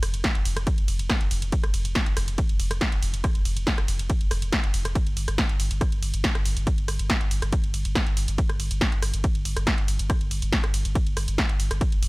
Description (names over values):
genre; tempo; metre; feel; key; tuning
driving peak-time techno; 140 BPM; 4/4; straight; unclear; A4 = 440 Hz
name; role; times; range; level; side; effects
saturated sub bass; bass; 0.0-12.1 s; F1 to G1; -27 LUFS; equal; tube saturation, sidechain pumping, low-pass filter
punchy analog drum machine; drums; 0.0-12.1 s; hi-hat, ride cymbal, rim click, snare drum; -28 LUFS; equal; sidechain pumping on hats, sidechain pumping on cymbals
electronic kick drum; drums; 0.2-11.9 s; none; -24 LUFS; equal; overdrive
room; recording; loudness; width
little or no reverb; none; -22 LUFS; side -24 dB against mid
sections
0.0-12.1 A section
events
none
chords
none